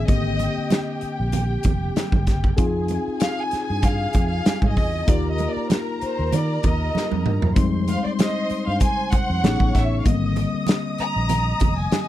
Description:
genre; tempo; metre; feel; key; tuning
lush 1970s-style soul; 96 BPM; 4/4; swing 54% on 16ths; F dorian; A4 = 443 Hz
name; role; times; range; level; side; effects
warm studio violin section; melody; 0.0-12.1 s; Bb4 to Bb5; -27 LUFS; equal; none
dark studio string section; second line; 0.0-12.1 s; G4 to Eb6; -31 LUFS; right 1 dB; none
tine electric piano; accompaniment; 0.0-12.1 s; D3 to G#4; -27 LUFS; left 4 dB; analog chorus
fingered electric bass; bass; 0.0-11.9 s; F1 to Eb3; -24 LUFS; equal; none
modern studio drum kit; drums; 0.1-12.1 s; hi-hat, kick drum, snare drum, toms; -22 LUFS; equal; none
congas; percussion; 0.1-12.1 s; none; -28 LUFS; right 6 dB; none
room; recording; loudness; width
little or no reverb; none; -19 LUFS; side -13 dB against mid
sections
0.0-12.1 A section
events
violin section solo 0.0-12.1; drum fill 6.9-7.6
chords
0.1 Abmaj9#11; 2.6 Fm7; 5.1 Ebadd9; 7.6 Fm7; 9.4 Amaj9#11; 10.1 Abmaj9#11

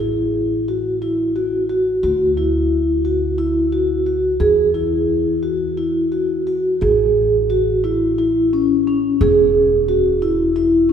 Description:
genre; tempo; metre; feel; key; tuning
contemporary instrumental, chamber music in an uneven meter; 177 BPM (eighths); 7/8; straight; unclear; A4 = 440 Hz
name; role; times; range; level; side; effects
vibraphone with soft mallets; arpeggios; 0.0-10.9 s; C#4 to G#4; -15 LUFS; equal; none
upright bass; bass; 0.0-10.9 s; E1 to E2; -24 LUFS; equal; none
room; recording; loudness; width
wet church reverb, RT60 3.6 s; recorded in a church or concert hall; -15 LUFS; side -8 dB against mid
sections
0.0-6.8 A section; 6.8-10.9 B section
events
none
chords
0.0 A5; 2.0 D; 4.4 N.C.; 6.8 Amaj7; 9.2 E

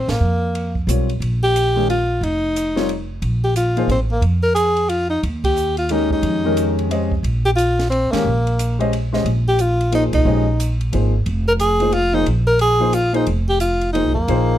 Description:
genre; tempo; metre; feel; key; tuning
modal jazz; 179 BPM; 3/4; swing 63% on 8ths; Bb dorian; A4 = 440 Hz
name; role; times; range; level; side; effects
mellow tenor saxophone; melody; 0.0-14.6 s; Bb3 to Bb4; -18 LUFS; equal; none
upright bass; bass; 0.0-14.6 s; F1 to F2; -20 LUFS; equal; none
compact cocktail drum kit; drums; 0.1-14.4 s; hi-hat, kick drum, ride cymbal, snare drum; -30 LUFS; right 2 dB; none
warm grand piano; accompaniment; 0.9-3.9, 5.9-14.6 s; Eb3 to Eb5; -21 LUFS; left 2 dB; none
room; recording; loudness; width
little or no reverb; close, detailed microphones; -16 LUFS; side -12 dB against mid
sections
0.0-14.6 A section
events
band accent 0.0, 5.4, 8.1, 10.1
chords
0.0 Bb9sus4

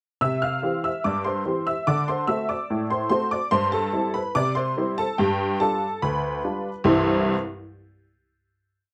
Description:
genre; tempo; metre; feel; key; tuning
ragtime piano; 72 BPM; 2/4; straight; C major; A4 = 439 Hz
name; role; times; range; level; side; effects
honky-tonk upright piano; solo; 0.2-7.3 s; C2 to F6; -24 LUFS; equal; none
room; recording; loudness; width
moderate booth ambience, RT60 0.2 s; none; -24 LUFS; mono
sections
0.2-6.9 A section; 6.9-8.5 final chord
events
none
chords
0.2 C; 1.9 D7; 3.5 C/G; 5.2 G7; 6.9 C

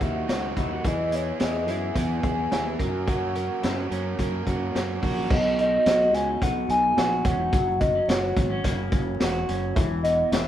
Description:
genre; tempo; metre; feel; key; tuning
jangly indie pop; 108 BPM; 4/4; straight; F# mixolydian; A4 = 440 Hz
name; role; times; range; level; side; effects
hollow clarinet-like synth lead; melody; 0.0-10.5 s; C#5 to G#5; -25 LUFS; equal; chorus
overdriven electric guitar; accompaniment; 0.0-5.3 s; F#2 to A#4; -33 LUFS; right 5 dB; none
electric guitar through a small old amp; arpeggios; 0.0-10.5 s; B2 to G#4; -29 LUFS; equal; none
sustaining fretless electric bass; bass; 0.0-10.5 s; E1 to F#2; -30 LUFS; equal; none
vintage drum kit; drums; 0.0-10.5 s; crash cymbal, hi-hat, kick drum, snare drum; -27 LUFS; equal; none
room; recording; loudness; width
moderate stone room reverb, RT60 1.3 s; band playing live in one room, vinyl crackle; -22 LUFS; side -11 dB against mid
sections
0.0-5.3 A section; 5.3-10.5 B section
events
none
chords
0.0 D#m; 0.8 E; 2.8 F#; 5.3 B; 7.5 F#; 9.8 E5

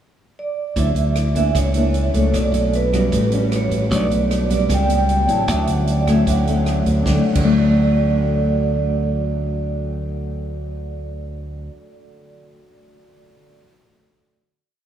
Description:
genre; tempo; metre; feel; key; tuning
bossa nova; 152 BPM; 4/4; straight; D major; A4 = 439 Hz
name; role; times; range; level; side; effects
vibraphone with medium mallets; melody; 0.4-11.7 s; B4 to A5; -23 LUFS; right 3 dB; analog delay
nylon-string guitar; accompaniment; 0.8-11.8 s; A2 to F#4; -21 LUFS; left 1 dB; lush chorus
modern bright fingered electric bass; bass; 0.8-11.7 s; A1 to D2; -20 LUFS; equal; none
swinging big-band drum kit; drums; 0.8-7.5 s; crash cymbal, hi-hat, kick drum, rim click, snare drum; -28 LUFS; right 1 dB; none
room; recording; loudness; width
wet huge ambient reverb, RT60 7.8 s; dreamy mix soaked in reverb; -16 LUFS; side -10 dB against mid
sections
0.0-0.8 pickup bar; 0.8-7.1 A section; 7.1-10.2 final chord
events
none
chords
0.0 N.C.; 0.8 Dmaj9; 1.6 F#7b13/C#; 2.3 Bm7; 3.1 A13; 3.9 Bm7; 4.7 A13/C#; 5.5 Dmaj9; 6.3 Dmaj7; 7.1 D

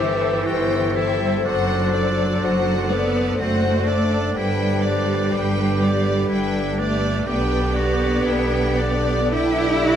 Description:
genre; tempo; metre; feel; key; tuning
classical, slow romantic movement for symphony orchestra; 62 BPM; 3/4; rubato; G major; A4 = 440 Hz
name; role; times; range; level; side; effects
rich symphonic violin section; melody; 0.0-10.0 s; D5 to G5; -31 LUFS; left 3 dB; none
mellow small flute group; second line; 0.0-10.0 s; B4 to D5; -28 LUFS; left 7 dB; none
rich chamber violin section; second line; 0.0-10.0 s; G4 to D5; -31 LUFS; equal; none
warm clarinet; second line; 0.0-10.0 s; G4 to A4; -31 LUFS; equal; none
warm oboe; second line; 0.0-10.0 s; C4 to G4; -30 LUFS; right 1 dB; none
clear symphonic viola section; accompaniment; 0.0-10.0 s; D4 to A4; -31 LUFS; right 3 dB; none
mellow bassoon; accompaniment; 0.0-10.0 s; D3 to E3; -29 LUFS; equal; none
dark French horn section; sustained chords; 0.0-10.0 s; D4 to C5; -28 LUFS; left 4 dB; none
clear studio cello section; bass; 0.0-10.0 s; E3 to E4; -23 LUFS; right 1 dB; none
rich chamber double bass section; bass; 0.0-10.0 s; F#1 to B1; -25 LUFS; right 2 dB; none
room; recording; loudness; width
light reverb; close, detailed microphones; -18 LUFS; side -9 dB against mid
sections
0.0-10.0 A section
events
none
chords
0.0 Am7/G; 1.5 D7/F#; 4.4 G; 7.3 G/B

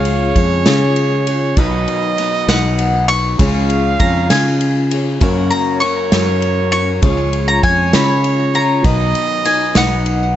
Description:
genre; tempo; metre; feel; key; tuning
indie folk with a building arrangement; 66 BPM (dotted quarters); 6/8; straight; unclear; A4 = 439 Hz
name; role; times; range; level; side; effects
mandolin; melody; 0.0-10.4 s; E#5 to C#6; -19 LUFS; left 2 dB; tape echo
mellow trumpet; second line; 0.0-10.4 s; C#5 to E#5; -21 LUFS; right 7 dB; none
picked steel-string acoustic guitar; accompaniment; 0.0-10.4 s; F#2 to B4; -22 LUFS; left 7 dB; none
warm upright piano; accompaniment; 0.0-10.4 s; F#1 to D#5; -26 LUFS; right 3 dB; none
dark brass ensemble; sustained chords; 0.0-10.4 s; C#3 to A#4; -26 LUFS; left 3 dB; none
mellow fretless electric bass; bass; 0.0-10.4 s; B1 to C#3; -17 LUFS; equal; none
unplugged drum kit; drums; 0.1-10.2 s; kick drum, ride cymbal, snare drum; -19 LUFS; equal; none
room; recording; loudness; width
small room ambience; nothing above 8.0 kHz; -12 LUFS; side -11 dB against mid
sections
0.0-10.4 A section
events
none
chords
0.0 C#; 1.6 B; 3.4 C#; 5.2 F#; 7.0 C#; 8.8 B

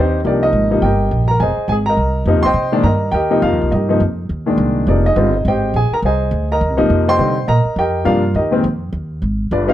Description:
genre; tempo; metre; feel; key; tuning
jazz piano trio; 208 BPM; 4/4; swing 60% on 8ths; C minor; A4 = 440 Hz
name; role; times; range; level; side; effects
warm baby grand piano; melody; 0.0-9.7 s; Bb2 to C6; -15 LUFS; left 1 dB; none
upright bass; bass; 0.0-9.7 s; F1 to C3; -17 LUFS; right 1 dB; none
room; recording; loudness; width
light reverb; dark, warm production; -13 LUFS; side -12 dB against mid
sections
0.2-9.7 A section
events
none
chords
0.2 Cm7; 1.4 Fm7; 2.6 Cm7; 4.9 Fm7; 7.2 Cm7

